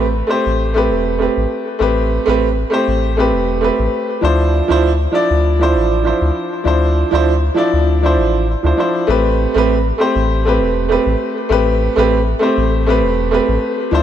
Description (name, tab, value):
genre	sunset chillout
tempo	99 BPM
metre	4/4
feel	swing 55% on 16ths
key	A minor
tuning	A4 = 440 Hz
part	bright baby grand piano	accompaniment	0.0-14.0 s	F3 to D5	-14 LUFS	moving between left 4 dB and right 4 dB	auto-pan, digital delay
part	round analog bass	bass	0.0-14.0 s	E1 to D2	-17 LUFS	equal	tube saturation
room	moderate lush hall reverb, RT60 2.6 s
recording	none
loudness	-13 LUFS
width	side -10 dB against mid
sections	0.0-14.0 A section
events	none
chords	0.0 Am9; 4.2 Dm9; 9.1 Am9